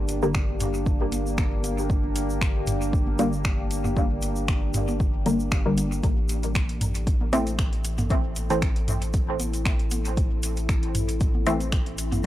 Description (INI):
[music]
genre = dub techno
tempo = 116 BPM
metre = 4/4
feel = swing 54% on 16ths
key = A phrygian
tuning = A4 = 440 Hz
[part]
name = deep dark ambient pad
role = sustained chords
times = 0.0-12.3 s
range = Bb3 to A4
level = -32 LUFS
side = equal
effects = chorus, built-in reverb, sidechain pumping
[part]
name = round analog bass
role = bass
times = 0.0-12.3 s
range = G1 to A1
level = -29 LUFS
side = equal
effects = tube saturation, sidechain pumping
[part]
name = deep house drum kit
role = drums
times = 0.1-12.2 s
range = finger snaps, hi-hat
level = -33 LUFS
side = equal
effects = overdrive, small room ambience, dub echo
[part]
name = egg shaker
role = percussion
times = 0.1-12.3 s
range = none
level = -39 LUFS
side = left 1 dB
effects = none
[part]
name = filtered dub chord stab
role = stabs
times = 0.2-11.7 s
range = D3 to C4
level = -28 LUFS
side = equal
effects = chorus, phaser, sidechain pumping, dub echo
[part]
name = electronic kick drum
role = drums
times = 0.3-11.8 s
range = none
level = -24 LUFS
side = equal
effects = overdrive, small room ambience
[part]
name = electronic toms and congas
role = percussion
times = 0.6-12.2 s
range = none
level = -32 LUFS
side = right 1 dB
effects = sidechain pumping on toms, small room ambience, sidechain pumping on perc, dub echo
[sound]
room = digital ambience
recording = dry, gritty hardware recording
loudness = -22 LUFS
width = side -14 dB against mid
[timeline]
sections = 0.0-12.3 A section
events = filter sweep on synth stab 0.0-12.3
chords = 0.0 Gm; 6.0 Am